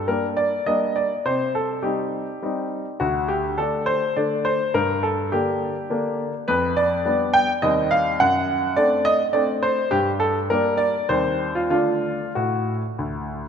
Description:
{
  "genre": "classical-period piano sonatina",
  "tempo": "103 BPM",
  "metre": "3/4",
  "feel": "rubato",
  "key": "G minor",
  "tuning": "A4 = 439 Hz",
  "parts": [
    { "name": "clear grand piano", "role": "solo", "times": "0.0-13.4 s", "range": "D2 to G5", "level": "-20 LUFS", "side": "equal", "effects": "none" }
  ],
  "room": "wet concert hall reverb, RT60 2.4 s",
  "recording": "none",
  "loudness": "-20 LUFS",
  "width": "side -7 dB against mid",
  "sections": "0.0-13.5 A section",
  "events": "none",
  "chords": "0.0 Gm; 1.2 Cm; 3.0 D5; 4.7 Gm; 6.5 G7/F; 7.6 Cm/Eb; 8.2 D7/F#; 9.9 Gm; 11.1 Cm/Eb; 11.7 D"
}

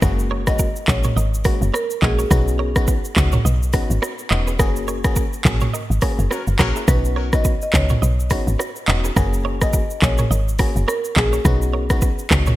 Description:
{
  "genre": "afrobeats",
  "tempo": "105 BPM",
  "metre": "4/4",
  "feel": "swing 58% on 16ths",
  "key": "B major",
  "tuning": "A4 = 441 Hz",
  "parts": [
    { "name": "FM electric piano", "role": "accompaniment", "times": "0.0-12.5 s", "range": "G#3 to G#4", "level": "-28 LUFS", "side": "left 4 dB", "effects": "chorus" },
    { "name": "direct-recorded clean electric guitar", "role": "riff", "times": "0.0-12.6 s", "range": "E4 to D#5", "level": "-30 LUFS", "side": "right 8 dB", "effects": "digital delay" },
    { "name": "deep log drum bass", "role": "bass", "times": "0.0-12.5 s", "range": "E1 to C#2", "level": "-20 LUFS", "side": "equal", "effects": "none" },
    { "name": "afro-pop drum kit", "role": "drums", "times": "0.0-12.6 s", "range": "handclaps, hi-hat, kick drum, rim click, shaker, toms", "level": "-19 LUFS", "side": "equal", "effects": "none" },
    { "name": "downlifter", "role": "sound effects", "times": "0.0-2.3 s", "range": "none", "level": "-46 LUFS", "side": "equal", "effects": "none" },
    { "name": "marimba with medium mallets", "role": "melody", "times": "0.5-2.2, 6.9-11.3 s", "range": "G#4 to D#5", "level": "-27 LUFS", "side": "right 1 dB", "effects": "digital delay" },
    { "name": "warm horn section", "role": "second line", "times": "6.3-6.8 s", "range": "F#3 to A#4", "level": "-29 LUFS", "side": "left 2 dB", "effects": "digital delay" }
  ],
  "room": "light reverb, digital ambience",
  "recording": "bright 1980s-style digital production",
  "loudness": "-16 LUFS",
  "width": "side -16 dB against mid",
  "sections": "0.0-12.6 A section",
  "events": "band accent 4.6-6.9",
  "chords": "0.0 F#add9; 2.3 Badd9; 4.6 F#add9; 6.9 Badd9; 9.2 F#add9; 11.5 Badd9"
}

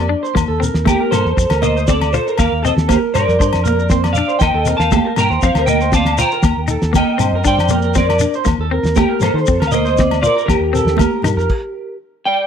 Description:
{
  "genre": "highlife guitar band",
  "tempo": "118 BPM",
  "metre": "4/4",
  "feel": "straight",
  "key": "unclear",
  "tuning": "A4 = 440 Hz",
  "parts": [
    { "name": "clean electric guitar", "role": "melody", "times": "0.0-12.5 s", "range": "G4 to Bb5", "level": "-18 LUFS", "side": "equal", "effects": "ensemble chorus" },
    { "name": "clean electric guitar", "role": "accompaniment", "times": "0.0-11.5 s", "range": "G3 to F4", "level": "-22 LUFS", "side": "left 10 dB", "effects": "none" },
    { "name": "electric guitar through a small old amp", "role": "arpeggios", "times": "0.0-11.5 s", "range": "G4 to D5", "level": "-22 LUFS", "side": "right 6 dB", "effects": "lush chorus, slapback echo" },
    { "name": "fingered electric bass", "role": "bass", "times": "0.0-11.5 s", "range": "D2 to Eb3", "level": "-19 LUFS", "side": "equal", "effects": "none" },
    { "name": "congas", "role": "percussion", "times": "0.1-11.4 s", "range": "none", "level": "-23 LUFS", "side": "right 16 dB", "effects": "none" },
    { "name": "shekere", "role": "percussion", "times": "0.3-11.5 s", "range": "none", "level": "-24 LUFS", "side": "left 4 dB", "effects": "none" },
    { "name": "cloth-damped thuddy drum kit", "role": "drums", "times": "0.4-11.6 s", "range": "crash cymbal, kick drum, snare drum", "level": "-17 LUFS", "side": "equal", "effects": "none" },
    { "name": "agogo bells", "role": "percussion", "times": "0.4-11.4 s", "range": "none", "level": "-26 LUFS", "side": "left 14 dB", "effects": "none" }
  ],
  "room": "small room reverb",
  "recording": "dry, close 1970s-style studio recording",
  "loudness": "-13 LUFS",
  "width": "side -8 dB against mid",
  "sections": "0.0-12.5 A section",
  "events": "stop 11.5-12.5",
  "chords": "0.4 Eb; 1.4 F; 2.4 Eb; 3.4 Gm (rootless); 4.4 Eb; 5.4 F5; 6.4 Eb; 7.5 Gm; 8.5 Eb; 9.5 F5; 10.5 Eb; 11.5 N.C."
}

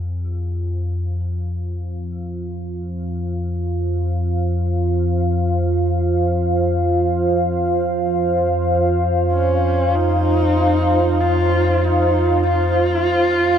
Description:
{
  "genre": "dark ambient drone",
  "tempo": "free time",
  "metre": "none",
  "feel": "none",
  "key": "F minor",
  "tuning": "A4 = 440 Hz",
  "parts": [
    { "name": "dark analog pad", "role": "sustained chords", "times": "0.4-13.6 s", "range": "F4 to F5", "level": "-20 LUFS", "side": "right 2 dB", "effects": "chorus" },
    { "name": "dark detuned synth bell", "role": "arpeggios", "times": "0.0-13.6 s", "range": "C4 to Ab4", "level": "-54 LUFS", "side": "left 4 dB", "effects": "none" },
    { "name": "analog drone", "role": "drone", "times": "0.0-13.6 s", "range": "F2", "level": "-20 LUFS", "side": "left 1 dB", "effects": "lush chorus" },
    { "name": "quartz singing bowl", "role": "texture", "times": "0.0-13.6 s", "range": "F4", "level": "-47 LUFS", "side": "left 5 dB", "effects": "none" },
    { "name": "warm horsehead fiddle", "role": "melody", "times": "9.3-13.6 s", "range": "Db4 to F4", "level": "-20 LUFS", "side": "equal", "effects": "tape echo" }
  ],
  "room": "wet huge ambient reverb, RT60 8.2 s",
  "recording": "dreamy mix soaked in reverb",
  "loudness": "-17 LUFS",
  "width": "side -8 dB against mid",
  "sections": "0.0-13.6 A section",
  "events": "none",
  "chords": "0.0 F5"
}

